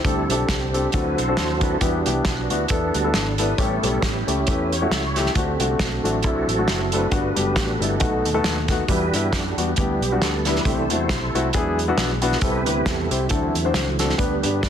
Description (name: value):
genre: uptempo gospel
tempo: 136 BPM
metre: 4/4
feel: swing 56% on 8ths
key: unclear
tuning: A4 = 438 Hz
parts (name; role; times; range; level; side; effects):
- mellow French horn section; sustained chords; 0.0-14.7 s; C3 to A4; -34 LUFS; equal; none
- tonewheel organ; sustained chords; 0.0-14.7 s; C3 to C#5; -26 LUFS; right 4 dB; slow rotary speaker, chorus vibrato
- fingered electric bass; bass; 0.0-14.7 s; F#1 to G2; -26 LUFS; equal; none
- warm soul drum kit; drums; 0.0-14.7 s; hi-hat, kick drum, snare drum; -24 LUFS; right 1 dB; none
- warm upright piano; accompaniment; 0.1-14.7 s; G2 to C5; -24 LUFS; left 4 dB; none
room: light reverb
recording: dense, heavily limited modern master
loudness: -19 LUFS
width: side -9 dB against mid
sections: 0.0-14.7 A section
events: tonewheel organ solo 0.0-14.7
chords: 0.0 D7sus4; 0.9 D7; 1.8 Em7; 3.6 A7; 5.3 D7; 7.1 Gmaj7; 8.0 B7; 8.9 Em7; 10.7 C6; 11.5 E7; 12.4 Am7/C; 13.3 D7